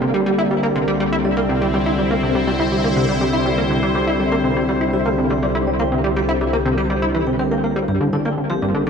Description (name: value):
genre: ambient, sequencer-driven space music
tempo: 122 BPM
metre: 4/4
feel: straight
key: unclear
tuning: A4 = 440 Hz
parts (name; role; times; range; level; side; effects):
- sweeping resonant pad; sustained chords; 0.0-8.9 s; D3 to Bb5; -20 LUFS; left 1 dB; chorus
- plucky analog bass; riff; 0.0-8.9 s; G2 to E4; -20 LUFS; equal; lush chorus, vintage 12-bit sampler grit, tape echo
- analog drone; bass; 0.0-8.9 s; G1 to C2; -27 LUFS; equal; chorus
- vibraphone with medium hard mallets; arpeggios; 0.1-8.9 s; G3 to G5; -31 LUFS; moving between left 2 dB and right 7 dB; auto-pan, tape echo
room: moderate plate reverb, RT60 2.9 s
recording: none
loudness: -16 LUFS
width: side -6 dB against mid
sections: 0.0-8.9 A section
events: none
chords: 0.0 Cadd9; 7.9 Gm